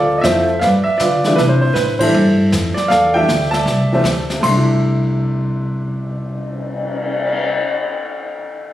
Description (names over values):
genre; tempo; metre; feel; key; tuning
jazz piano trio; 158 BPM; 4/4; swing 64% on 8ths; C major; A4 = 440 Hz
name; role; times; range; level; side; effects
warm baby grand piano; melody; 0.0-7.8 s; C3 to C6; -16 LUFS; equal; none
upright bass; bass; 0.0-7.6 s; C2 to D3; -18 LUFS; equal; none
jazz brush drum kit; drums; 0.2-7.4 s; brushed snare drum, crash cymbal, cymbal swell, hi-hat, kick drum, snare drum; -23 LUFS; left 3 dB; none
room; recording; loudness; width
light reverb; recorded on a phone in the room, studio reverb, compression; -14 LUFS; side -13 dB against mid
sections
0.0-4.4 A section; 4.4-7.5 B section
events
band accent 2.0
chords
0.0 Dm7; 0.6 G7; 1.4 C69